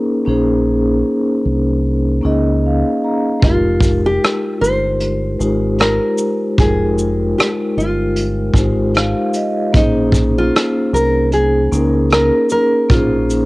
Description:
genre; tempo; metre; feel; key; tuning
lo-fi hip hop; 76 BPM; 4/4; swing 57% on 16ths; F minor; A4 = 442 Hz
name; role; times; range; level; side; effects
vibraphone with soft mallets; accompaniment; 0.0-13.5 s; Ab3 to Bb5; -17 LUFS; left 1 dB; cassette tape
deep dub fingered electric bass; bass; 0.3-13.5 s; F1 to Db2; -18 LUFS; equal; none
nylon-string guitar; melody; 3.4-13.5 s; Eb4 to C5; -18 LUFS; equal; cassette tape
vintage brush drum kit; drums; 3.4-13.5 s; hi-hat, kick drum, rim click, shaker; -16 LUFS; equal; cassette tape
room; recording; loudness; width
small room ambience; home recording on cassette; -13 LUFS; side -21 dB against mid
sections
0.0-13.5 A section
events
vibraphone fill 2.2-3.4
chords
0.0 Bbm11; 3.4 Fm11; 9.7 Bbm11

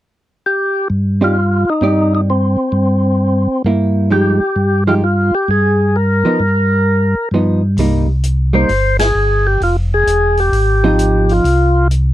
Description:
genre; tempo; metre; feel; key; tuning
soul jazz organ trio; 131 BPM; 4/4; swing 66% on 8ths; C minor; A4 = 440 Hz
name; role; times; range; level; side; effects
percussive tonewheel organ; melody; 0.5-11.9 s; C4 to C5; -15 LUFS; equal; slow rotary speaker
mellow tonewheel organ; bass; 0.9-12.1 s; E1 to G2; -14 LUFS; equal; slow rotary speaker
vintage hollow-body jazz guitar; accompaniment; 1.2-11.4 s; F3 to D5; -16 LUFS; right 2 dB; none
vintage drum kit; drums; 7.8-12.0 s; hi-hat, ride cymbal, snare drum; -28 LUFS; equal; none
room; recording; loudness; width
little or no reverb; dry, close 1970s-style studio recording; -12 LUFS; side -14 dB against mid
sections
0.4-7.8 A section; 7.8-12.1 B section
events
band accent 8.9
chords
0.4 Cmadd9; 2.3 Gsus4; 3.2 C7; 4.1 Fm9; 5.9 G7alt; 7.8 Cm7; 9.6 Fm7; 11.4 N.C.

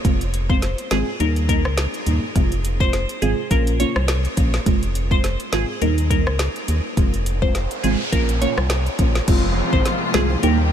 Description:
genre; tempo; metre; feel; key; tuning
dancehall; 104 BPM; 4/4; swing 56% on 16ths; F minor; A4 = 439 Hz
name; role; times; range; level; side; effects
deep mellow chord stab; accompaniment; 0.0-10.7 s; G3 to G4; -24 LUFS; right 1 dB; chorus, phaser, sidechain pumping
organ-like FM bass; bass; 0.0-10.7 s; F1 to Eb2; -21 LUFS; equal; none
deep house drum kit; drums; 0.0-10.6 s; crash cymbal, hi-hat, kick drum, rim click, snare drum; -22 LUFS; equal; none
glassy wavetable pluck; melody; 0.5-10.5 s; Ab4 to Db5; -26 LUFS; equal; chorus, ping-pong delay
noise sweep and downlifter; sound effects; 7.2-10.7 s; none; -27 LUFS; equal; none
rich studio string section; sustained chords; 9.3-10.7 s; C3 to G4; -25 LUFS; left 2 dB; sidechain pumping
bongos; percussion; 9.3-10.6 s; none; -33 LUFS; left 7 dB; none
room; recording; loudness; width
light reverb, digital ambience; none; -17 LUFS; side -9 dB against mid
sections
0.0-9.3 A section; 9.3-10.7 B section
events
noise sweep 7.2-9.3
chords
0.0 Fm; 1.2 Eb; 2.4 Fm; 3.5 Bbm; 4.7 Fm; 5.8 Eb; 7.0 Fm; 8.1 Bbm; 9.3 Fm

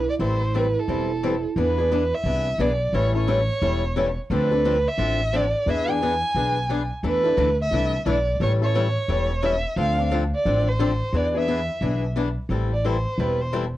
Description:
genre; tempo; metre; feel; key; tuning
acoustic string swing (jazz manouche); 176 BPM; 4/4; swing 62% on 8ths; A minor; A4 = 437 Hz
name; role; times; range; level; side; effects
warm violin; melody; 0.0-13.5 s; A4 to G#5; -25 LUFS; right 2 dB; none
picked steel-string acoustic guitar; second line; 0.0-1.4 s; E4; -30 LUFS; right 9 dB; none
upright bass; bass; 0.0-13.7 s; E1 to E2; -25 LUFS; equal; none
picked swing-style acoustic guitar; accompaniment; 0.2-13.6 s; D3 to A4; -25 LUFS; left 4 dB; none
room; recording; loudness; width
light reverb; worn, warbling old tape, cassette tape, warbly pitch drift; -20 LUFS; side -14 dB against mid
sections
0.0-1.6 A section; 1.6-12.5 B section; 12.5-13.8 C section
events
violin solo 12.5-13.8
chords
0.2 Am7; 1.6 E7; 2.9 A7; 4.3 Dm7; 5.7 E7; 7.0 E7sus4; 8.4 A7; 9.8 Dm7; 11.1 E7; 12.5 Am7

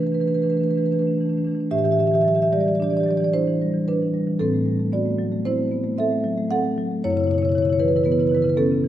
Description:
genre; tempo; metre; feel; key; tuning
classical, contemporary piece for solo marimba; 104-119 BPM; 5/4; rubato; unclear; A4 = 440 Hz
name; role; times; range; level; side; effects
marimba with soft mallets; solo; 0.0-8.9 s; F#2 to F#5; -19 LUFS; equal; none
room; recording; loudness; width
wet scoring stage reverb, RT60 1.7 s; none; -19 LUFS; side -12 dB against mid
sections
0.0-1.7 A section; 1.7-8.9 B section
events
none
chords
0.0 E7sus4; 1.7 Am11; 7.0 F#m11

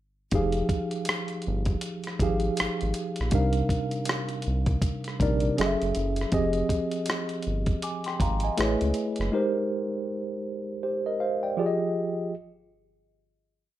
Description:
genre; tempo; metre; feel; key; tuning
R&B, neo-soul; 80 BPM; 4/4; swing 60% on 16ths; F dorian; A4 = 440 Hz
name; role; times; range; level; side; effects
mellow tine electric piano; accompaniment; 0.3-12.3 s; C3 to D6; -27 LUFS; right 1 dB; medium stereo tremolo, plate reverb
round analog bass; bass; 0.3-9.3 s; F1 to C#2; -28 LUFS; equal; none
dusty soul sampler-style drum kit; drums; 0.3-9.3 s; hi-hat, kick drum, rim click; -29 LUFS; equal; none
room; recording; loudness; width
moderate studio reverb, RT60 0.7 s; faint mains hum; -25 LUFS; side -13 dB against mid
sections
0.3-12.3 A section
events
none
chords
0.3 Fm9; 3.3 Cm11; 5.6 Gbm9; 6.3 Fm9; 8.6 Amaj9; 9.3 Abmaj9; 11.6 Fm9

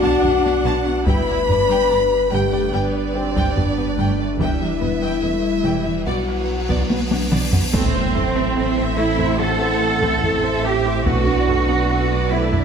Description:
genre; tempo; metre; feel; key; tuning
cinematic, hybrid orchestral and electronic film score; 72 BPM; 4/4; straight; unclear; A4 = 440 Hz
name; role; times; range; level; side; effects
clear symphonic violin section; melody; 0.0-12.6 s; F#4 to A5; -31 LUFS; left 1 dB; none
rich chamber violin section; second line; 0.0-12.6 s; B4 to B5; -28 LUFS; equal; none
warm symphonic viola section; accompaniment; 0.0-12.6 s; F#3 to C5; -28 LUFS; right 2 dB; none
dark French horn section; sustained chords; 0.0-12.6 s; A3 to B4; -23 LUFS; left 4 dB; none
ethereal airy pad; sustained chords; 0.0-12.6 s; F#3 to B4; -27 LUFS; right 1 dB; ensemble chorus, built-in reverb
tight sequenced synth; arpeggios; 0.0-12.6 s; E3 to B4; -30 LUFS; left 1 dB; none
pure sine sub bass; bass; 0.0-12.6 s; E1 to B1; -28 LUFS; equal; none
rich symphonic cello section; bass; 0.0-12.6 s; E2 to A4; -24 LUFS; right 4 dB; none
taiko ensemble; drums; 0.0-12.6 s; none; -23 LUFS; equal; none
felt-muted upright piano; texture; 0.0-12.6 s; E4 to B5; -34 LUFS; equal; none
rich studio double bass section; bass; 0.2-12.6 s; E1 to B1; -26 LUFS; right 4 dB; none
cymbal swell and impact; sound effects; 6.2-11.1 s; none; -28 LUFS; equal; none
room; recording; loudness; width
wet scoring stage reverb, RT60 1.7 s; none; -16 LUFS; side -7 dB against mid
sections
0.0-7.7 A section; 7.7-12.6 B section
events
cymbal swell 6.2-7.7; drum fill 6.9-7.7; impact 7.7-11.1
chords
0.0 Bm7; 1.1 G; 4.4 Em; 6.1 Bm; 7.7 Am; 11.1 Bm7

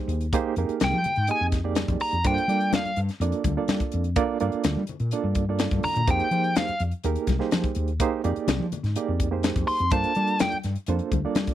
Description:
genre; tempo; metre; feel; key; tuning
electric jazz fusion; 125 BPM; 4/4; straight; F dorian; A4 = 440 Hz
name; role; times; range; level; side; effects
reed electric piano; accompaniment; 0.0-11.5 s; Bb3 to Eb5; -28 LUFS; right 8 dB; fast tremolo
woody fretless electric bass; bass; 0.1-11.5 s; C2 to G3; -26 LUFS; left 1 dB; lush chorus
tight funk drum kit; drums; 0.1-11.5 s; hi-hat, kick drum, snare drum; -27 LUFS; left 1 dB; none
congas; percussion; 0.3-11.5 s; none; -33 LUFS; left 10 dB; none
bluesy overdriven lead guitar; melody; 0.8-6.8, 9.7-10.5 s; F5 to C6; -25 LUFS; left 1 dB; distortion
room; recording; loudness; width
little or no reverb; dry, close 1970s-style studio recording; -22 LUFS; side -12 dB against mid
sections
0.0-11.5 A section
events
lead electric guitar solo 0.0-11.5; drum fill 5.6-6.1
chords
0.0 Fm11; 2.2 Gm9; 6.1 Fm11; 9.9 Gm11

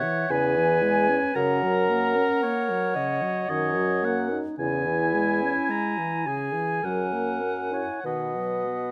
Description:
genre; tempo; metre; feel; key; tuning
classical, slow romantic movement for wind quintet; 49-57 BPM; 3/4; rubato; unclear; A4 = 439 Hz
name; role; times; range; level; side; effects
mellow hollow concert flute; melody; 0.0-8.9 s; E5 to G#5; -33 LUFS; equal; none
warm oboe; second line; 0.0-8.9 s; C#5 to A#5; -32 LUFS; equal; none
bright clarinet; accompaniment; 0.0-8.9 s; E4 to D#5; -30 LUFS; equal; none
warm French horn; accompaniment; 0.0-8.9 s; C#3 to E4; -33 LUFS; equal; none
mellow bassoon; bass; 0.3-8.9 s; E2 to B2; -30 LUFS; equal; none
room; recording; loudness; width
light reverb; close, detailed microphones; -25 LUFS; mono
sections
0.0-8.9 A section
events
none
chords
0.3 C#m/E; 1.4 F#; 4.6 C#m/E; 6.8 F#9; 8.0 B

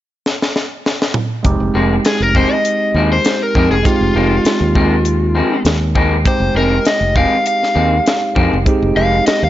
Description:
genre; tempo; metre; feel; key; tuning
straight-eighth soul blues; 100 BPM; 4/4; swing 54% on 16ths; F minor; A4 = 441 Hz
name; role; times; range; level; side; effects
tight funk drum kit; drums; 0.3-9.4 s; hi-hat, kick drum, snare drum, toms; -16 LUFS; equal; none
overdriven tine electric piano; accompaniment; 1.4-9.5 s; Ab3 to G4; -19 LUFS; right 4 dB; phaser
fingered electric bass; bass; 1.4-9.5 s; F1 to F2; -17 LUFS; equal; none
electric guitar through a small old amp; stabs; 1.7-9.2 s; F2 to C4; -19 LUFS; left 2 dB; vibrato effect
overdriven semi-hollow guitar; melody; 2.1-9.5 s; F4 to F5; -17 LUFS; left 2 dB; none
room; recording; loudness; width
light reverb, small room ambience; nothing above 7.7 kHz; -12 LUFS; side -13 dB against mid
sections
0.0-1.4 A section; 1.4-9.5 B section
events
drum fill 0.2-1.4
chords
0.0 N.C.; 1.4 Fm7

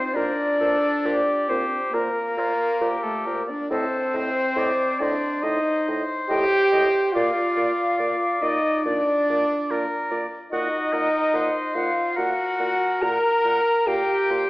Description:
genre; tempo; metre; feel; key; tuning
classical, slow romantic movement for wind quintet; 66-74 BPM; 4/4; rubato; Bb major; A4 = 439 Hz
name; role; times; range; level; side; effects
concert flute; melody; 0.0-14.5 s; A4 to Bb5; -25 LUFS; left 2 dB; none
warm oboe; second line; 0.0-14.5 s; F4 to D5; -28 LUFS; equal; none
clear French horn; accompaniment; 0.0-14.5 s; A3 to Bb4; -24 LUFS; right 1 dB; none
mellow clarinet; accompaniment; 0.2-14.5 s; C5 to Gb5; -33 LUFS; right 2 dB; none
mellow bassoon; bass; 0.2-14.5 s; A2 to Bb2; -31 LUFS; equal; none
room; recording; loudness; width
wet scoring stage reverb, RT60 1.9 s; recorded in a church or concert hall, AM radio sound; -20 LUFS; side -19 dB against mid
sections
0.0-14.5 A section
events
none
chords
0.1 C5/Bb; 3.7 Am7b5; 7.1 Bb; 10.5 Ebm/Bb; 13.9 Bb5

